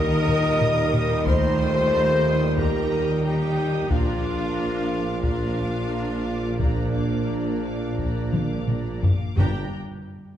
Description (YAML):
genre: cinematic, epic orchestral film score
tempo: 89 BPM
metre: 4/4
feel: uneven beats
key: unclear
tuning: A4 = 439 Hz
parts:
  - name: clear studio violin section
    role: melody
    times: 0.0-9.8 s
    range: D5 to Eb6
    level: -37 LUFS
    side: equal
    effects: none
  - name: rich symphonic violin section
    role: second line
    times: 0.0-9.8 s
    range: D5 to Eb6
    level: -39 LUFS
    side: left 2 dB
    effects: none
  - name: clear symphonic viola section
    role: accompaniment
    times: 0.0-9.8 s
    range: A3 to Bb4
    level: -31 LUFS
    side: equal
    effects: none
  - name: clear French horn section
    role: sustained chords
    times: 0.0-9.7 s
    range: D4 to Eb5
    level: -27 LUFS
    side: left 2 dB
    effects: none
  - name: warm trombone section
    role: sustained chords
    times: 0.0-9.7 s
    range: Bb2 to G3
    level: -32 LUFS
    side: right 3 dB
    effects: none
  - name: clear trumpet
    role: stabs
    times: 0.0-9.7 s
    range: D4 to Eb5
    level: -34 LUFS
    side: right 2 dB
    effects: none
  - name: mellow tuba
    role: bass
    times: 0.0-9.7 s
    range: G1 to Eb2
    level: -29 LUFS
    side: right 1 dB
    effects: none
  - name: rich symphonic cello section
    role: bass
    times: 0.0-9.8 s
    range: G2 to Eb3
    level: -31 LUFS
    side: right 1 dB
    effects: none
  - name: rich symphonic double bass section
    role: bass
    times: 0.0-9.8 s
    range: G1 to Eb2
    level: -30 LUFS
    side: right 1 dB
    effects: none
  - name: taiko ensemble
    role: drums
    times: 0.3-9.5 s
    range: none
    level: -25 LUFS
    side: left 1 dB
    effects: none
  - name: timpani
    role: percussion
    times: 9.4-9.7 s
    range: G2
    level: -34 LUFS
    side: left 1 dB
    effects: none
room: wet scoring stage reverb, RT60 1.7 s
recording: dark, warm production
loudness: -20 LUFS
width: side -10 dB against mid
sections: 0.0-9.4 A section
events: drum fill 8.3-9.4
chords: 0.0 Eb; 3.9 Bb; 9.4 Gm